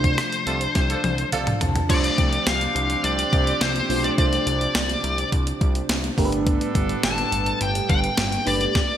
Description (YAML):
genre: 1980s-style pop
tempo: 105 BPM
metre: 4/4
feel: straight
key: unclear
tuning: A4 = 442 Hz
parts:
  - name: high-gain lead guitar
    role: melody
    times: 0.0-9.0 s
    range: C5 to A5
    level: -24 LUFS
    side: left 2 dB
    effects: distortion, digital delay
  - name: FM electric piano with soft pad layer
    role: accompaniment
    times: 0.0-8.8 s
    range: A3 to A5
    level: -28 LUFS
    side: right 1 dB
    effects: chorus, phaser
  - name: chorused pulse-width pad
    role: sustained chords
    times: 0.0-8.7 s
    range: A2 to D4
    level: -32 LUFS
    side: right 2 dB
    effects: none
  - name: fat analog bass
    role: bass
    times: 0.0-8.7 s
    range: F#1 to C2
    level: -27 LUFS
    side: equal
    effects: none
  - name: clean 12-bit digital drum machine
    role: drums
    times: 0.0-8.9 s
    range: crash cymbal, hi-hat, kick drum, rim click, snare drum, toms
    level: -23 LUFS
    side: equal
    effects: gated reverb
  - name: clear horn section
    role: stabs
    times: 0.5-8.4 s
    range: B3 to A4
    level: -31 LUFS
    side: right 4 dB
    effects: digital delay
room: moderate lush hall reverb, RT60 1.6 s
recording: bright 1980s-style digital production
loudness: -19 LUFS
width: side -10 dB against mid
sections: 0.0-1.9 A section; 1.9-9.0 B section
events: drum fill 0.8-1.9; FM electric piano fill 1.0-1.9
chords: 0.0 Dm7/C; 1.9 Dm7; 6.2 Gadd9